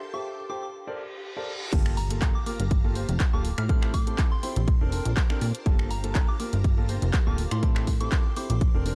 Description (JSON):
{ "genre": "piano house", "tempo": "122 BPM", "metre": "4/4", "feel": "swing 54% on 16ths", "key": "G dorian", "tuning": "A4 = 439 Hz", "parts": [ { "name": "string machine, violins", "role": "sustained chords", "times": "0.0-8.9 s", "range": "G4 to D6", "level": "-47 LUFS", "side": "equal", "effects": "ensemble chorus, sidechain pumping" }, { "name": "ethereal airy pad", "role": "texture", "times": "0.0-8.9 s", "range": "D4 to C5", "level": "-46 LUFS", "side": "equal", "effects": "none" }, { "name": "soft synth bell", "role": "melody", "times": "0.1-8.6 s", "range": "Bb5 to F6", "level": "-41 LUFS", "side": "equal", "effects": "chorus, phaser, dub echo" }, { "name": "clear grand piano", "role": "riff", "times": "0.1-8.9 s", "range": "Bb3 to G5", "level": "-38 LUFS", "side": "equal", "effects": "vintage 12-bit sampler grit, sidechain pumping" }, { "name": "reverse cymbal and impact", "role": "sound effects", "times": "0.9-3.7 s", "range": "none", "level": "-41 LUFS", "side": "equal", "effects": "none" }, { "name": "plucky analog bass", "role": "bass", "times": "1.7-8.9 s", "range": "D1 to Bb2", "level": "-30 LUFS", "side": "equal", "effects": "sidechain pumping" }, { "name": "electronic kick drum", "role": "drums", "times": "1.7-8.7 s", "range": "none", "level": "-26 LUFS", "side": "equal", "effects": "overdrive" }, { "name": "house drum kit", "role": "drums", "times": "1.7-8.9 s", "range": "crash cymbal, finger snaps, handclaps, hi-hat", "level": "-38 LUFS", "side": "equal", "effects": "overdrive" } ], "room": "little or no reverb", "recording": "dark, warm production", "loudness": "-26 LUFS", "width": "mono", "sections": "0.0-1.7 A section; 1.7-8.9 B section", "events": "filter sweep on grand piano 0.0-1.7; reverse cymbal 0.9-1.7; drop 1.7-8.9; impact 1.7-3.7", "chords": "0.0 Am7; 0.7 Bbmaj9; 1.7 Gm9; 3.7 Am7; 4.7 Bbmaj9; 5.7 Gm9; 7.6 Am7" }